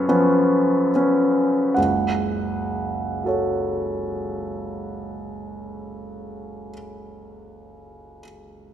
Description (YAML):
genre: classical, romantic nocturne for solo piano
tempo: 33-44 BPM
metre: 4/4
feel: rubato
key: F# minor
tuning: A4 = 439 Hz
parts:
  - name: bright grand piano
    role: solo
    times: 0.0-8.7 s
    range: F#1 to F#5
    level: -21 LUFS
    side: equal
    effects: none
room: moderate concert hall reverb, RT60 2.3 s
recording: none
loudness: -19 LUFS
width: side -10 dB against mid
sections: 0.0-1.8 A section; 1.8-7.5 B section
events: slowing down 0.0-1.8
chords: 0.0 C#7/F#; 1.8 F#m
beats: 0.08 | 1.76 3.24 4.70 6.07